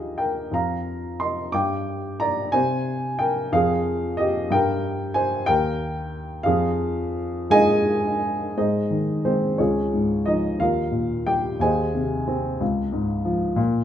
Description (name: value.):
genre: classical, lyrical solo piano.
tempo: 60 BPM (dotted quarters).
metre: 6/8.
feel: rubato.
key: F dorian, Ab major from 8.6 s.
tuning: A4 = 440 Hz.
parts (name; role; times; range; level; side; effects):
warm baby grand piano; solo; 0.0-13.8 s; Db2 to D6; -21 LUFS; equal; none.
room: moderate recital hall reverb, RT60 1.7 s.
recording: minimal, uncompressed stereo recording.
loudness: -21 LUFS.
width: side -10 dB against mid.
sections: 0.0-8.6 A section; 8.6-13.8 B section.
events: none.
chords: 0.0 Ebadd9; 0.5 F7sus4; 1.5 G5; 2.5 Abmaj9/C; 3.5 Fm; 4.5 Gm; 5.5 Eb; 6.5 Fm7; 8.6 Ab; 9.6 Db; 10.6 Eb; 11.6 Ab/Eb; 12.6 Db.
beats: | 0.52 1.53 | 2.54 3.53 | 4.51 5.48 | 6.46 7.50 | 8.56 9.59 | 10.60 11.61 | 12.61 13.59.